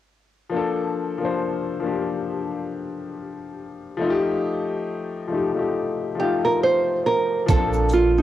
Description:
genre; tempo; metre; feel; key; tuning
lo-fi hip hop; 69 BPM; 4/4; swing 57% on 16ths; Bb major; A4 = 440 Hz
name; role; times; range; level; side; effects
warm upright piano; accompaniment; 0.5-8.2 s; F3 to C5; -24 LUFS; left 4 dB; cassette tape
nylon-string guitar; melody; 6.2-8.2 s; Eb4 to C5; -19 LUFS; right 2 dB; cassette tape
soft dub sub bass; bass; 7.5-8.2 s; Bb1; -22 LUFS; right 2 dB; none
boom bap sampler-style drum kit; drums; 7.5-8.1 s; hi-hat, kick drum, shaker; -21 LUFS; right 2 dB; cassette tape
egg shaker; percussion; 7.5-8.2 s; none; -44 LUFS; right 11 dB; none
room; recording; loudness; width
moderate spring reverb, RT60 2.5 s; home recording on cassette, faint mains hum; -21 LUFS; side -12 dB against mid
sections
0.5-7.5 A section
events
none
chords
0.5 Bbmaj7; 4.0 F9; 7.5 Bbmaj7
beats
| 0.53 1.40 2.27 3.14 | 4.01 4.88 5.75 6.62 | 7.49

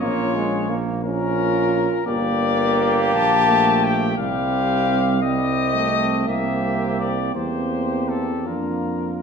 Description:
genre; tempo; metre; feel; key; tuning
classical, brass quintet; 53-59 BPM (dotted quarters); 6/8; rubato; unclear; A4 = 441 Hz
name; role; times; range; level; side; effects
warm cornet; melody; 0.0-9.2 s; A4 to A5; -23 LUFS; left 7 dB; none
dark trumpet; second line; 0.0-9.2 s; F4 to Bb4; -27 LUFS; right 4 dB; none
mellow French horn; accompaniment; 0.0-9.2 s; Bb3 to F4; -25 LUFS; left 1 dB; none
warm trombone; accompaniment; 0.0-9.2 s; G3 to Db4; -26 LUFS; right 2 dB; none
warm tuba; bass; 0.0-9.2 s; G1 to F2; -25 LUFS; right 4 dB; none
room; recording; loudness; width
wet recital hall reverb, RT60 1.3 s; none; -18 LUFS; side -6 dB against mid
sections
0.0-9.2 A section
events
none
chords
0.0 Bbm; 2.1 Gm; 4.2 Cm; 6.3 C7; 8.5 Bb/F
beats
| 0.01 1.04 | 2.07 3.14 | 4.18 5.23 | 6.28 7.35 | 8.47

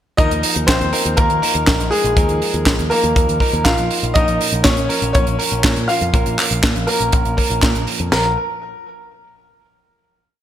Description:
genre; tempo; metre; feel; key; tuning
italo disco; 121 BPM; 4/4; straight; Bb minor; A4 = 438 Hz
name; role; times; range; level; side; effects
clear grand piano; melody; 0.2-8.4 s; Ab3 to F5; -20 LUFS; left 1 dB; digital delay
direct-recorded clean electric guitar; stabs; 0.2-8.3 s; Bb2 to Bb4; -24 LUFS; right 2 dB; spring reverb
picked electric bass with an envelope filter; bass; 0.2-8.4 s; Bb1 to Bb2; -22 LUFS; equal; none
tight funk drum kit; drums; 0.2-8.2 s; crash cymbal, kick drum, snare drum; -18 LUFS; left 1 dB; studio reverb
tight funk drum kit; drums; 0.2-8.1 s; handclaps, hi-hat, snare drum; -19 LUFS; right 2 dB; studio reverb
room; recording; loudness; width
moderate lush hall reverb, RT60 1.8 s, studio ambience; bright 1980s-style digital production; -14 LUFS; side -10 dB against mid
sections
0.2-8.1 chorus; 8.1-10.1 final chord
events
none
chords
0.2 Ebsus2; 4.2 Bbm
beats
| 0.19 0.68 1.18 1.68 | 2.17 2.67 3.16 3.66 | 4.15 4.65 5.15 5.64 | 6.14 6.63 7.13 7.62 | 8.12

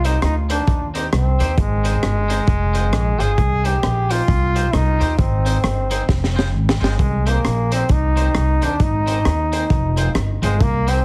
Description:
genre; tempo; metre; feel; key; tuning
ska; 133 BPM; 4/4; swing 60% on 8ths; C minor; A4 = 440 Hz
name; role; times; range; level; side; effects
brilliant trombone; melody; 0.0-11.0 s; Ab3 to Ab4; -25 LUFS; equal; tape echo
twangy electric guitar; accompaniment; 0.0-11.0 s; C4 to C5; -30 LUFS; equal; none
upright bass; bass; 0.0-11.0 s; F1 to Eb2; -21 LUFS; equal; none
crunchy breakbeat drum kit; drums; 0.0-11.0 s; hi-hat, kick drum, rim click, snare drum; -24 LUFS; equal; none
room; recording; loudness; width
little or no reverb; heavily compressed radio sound, multiband compression; -18 LUFS; mono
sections
0.0-11.0 A section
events
drum fill 6.1-7.0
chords
0.0 Cm; 1.6 Ab; 2.5 Fm; 3.4 Cm; 5.2 Ab; 6.1 Fm; 7.0 Cm; 8.8 Ab; 9.7 Fm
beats
0.22 0.68 1.13 | 1.58 2.03 2.48 2.93 | 3.38 3.83 4.29 4.74 | 5.19 5.64 6.09 6.54 | 6.99 7.44 7.90 8.35 | 8.80 9.25 9.70 10.15 | 10.61

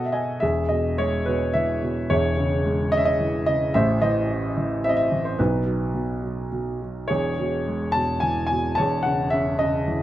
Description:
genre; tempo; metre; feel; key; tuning
classical, lyrical solo piano; 108 BPM; 3/4; rubato; E major; A4 = 440 Hz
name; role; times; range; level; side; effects
warm grand piano; solo; 0.0-10.0 s; E1 to A5; -21 LUFS; equal; none
room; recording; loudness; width
moderate recital hall reverb, RT60 1.8 s; close, detailed microphones; -21 LUFS; side -13 dB against mid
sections
0.4-10.0 A section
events
grand piano fill 0.0-0.4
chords
0.4 E; 2.1 C#m/E; 3.7 Am; 5.4 B; 7.1 E6; 8.8 C#madd9/E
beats
| 0.43 0.99 1.55 | 2.10 2.65 3.19 | 3.75 4.29 4.84 | 5.39 5.94 6.51 | 7.09 7.66 8.22 | 8.78 9.34 9.89

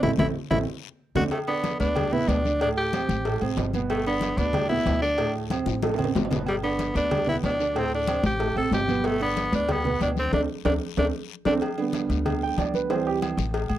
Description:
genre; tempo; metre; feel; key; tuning
latin, salsa; 186 BPM; 4/4; straight; G major; A4 = 440 Hz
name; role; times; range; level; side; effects
raspy tenor saxophone; melody; 0.0-11.5 s; G3 to A4; -26 LUFS; left 1 dB; none
warm grand piano; accompaniment; 0.0-13.4 s; A2 to B5; -28 LUFS; right 5 dB; none
upright bass; bass; 0.0-13.8 s; G1 to D2; -29 LUFS; left 1 dB; none
bongos and cowbell; percussion; 0.0-13.7 s; none; -33 LUFS; left 7 dB; none
congas; percussion; 0.0-13.8 s; none; -32 LUFS; left 2 dB; none
guiro; percussion; 0.0-13.8 s; none; -44 LUFS; left 20 dB; none
timbales and agogo bells; percussion; 0.0-13.8 s; none; -34 LUFS; right 6 dB; none
room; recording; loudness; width
little or no reverb; dry, close 1970s-style studio recording; -22 LUFS; side -12 dB against mid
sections
0.0-1.3 A section; 1.3-11.6 B section; 11.6-13.8 C section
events
drum fill 0.0-1.3, 5.7-6.5; band accent 0.0-1.3, 10.3-11.6; grand piano solo 11.6-13.8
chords
0.0 Am; 0.7 D7(no3); 1.3 G; 2.6 D7sus4; 3.9 G; 5.2 D7sus4; 6.5 G; 7.8 D7sus4; 9.0 G; 10.3 D5; 11.6 G; 12.9 D7sus4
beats
| 0.03 0.35 0.68 1.00 | 1.32 1.64 1.97 2.29 | 2.61 2.93 3.25 3.58 | 3.90 4.22 4.54 4.86 | 5.19 5.51 5.83 6.15 | 6.47 6.79 7.12 7.44 | 7.76 8.08 8.40 8.73 | 9.05 9.37 9.69 10.01 | 10.34 10.66 10.98 11.30 | 11.62 11.94 12.26 12.59 | 12.91 13.23 13.55

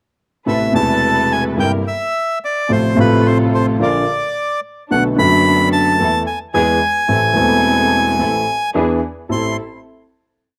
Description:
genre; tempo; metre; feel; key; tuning
tango; 109 BPM; 4/4; rubato; A harmonic minor; A4 = 440 Hz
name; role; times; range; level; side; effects
bandoneon; melody; 0.5-9.6 s; B4 to C6; -19 LUFS; equal; slapback echo
warm grand piano; accompaniment; 0.5-9.5 s; E1 to A4; -18 LUFS; equal; none
muted studio string section; stabs; 0.5-9.5 s; A2 to B4; -26 LUFS; equal; none
room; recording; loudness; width
little or no reverb; recorded outdoors, with no room sound; -16 LUFS; mono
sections
0.5-9.3 A section; 9.3-10.6 final chord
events
none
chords
0.5 Amadd9; 1.6 C7/G; 2.7 F/A; 3.8 Bb; 4.9 Bm7; 6.0 Esus4; 6.5 E; 7.1 Am; 8.7 E7; 9.3 Am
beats
| 0.47 1.03 1.58 2.14 | 2.69 3.25 3.80 4.36 | 4.91 5.45 6.00 6.54 | 7.09 7.64 8.19 8.74 | 9.30

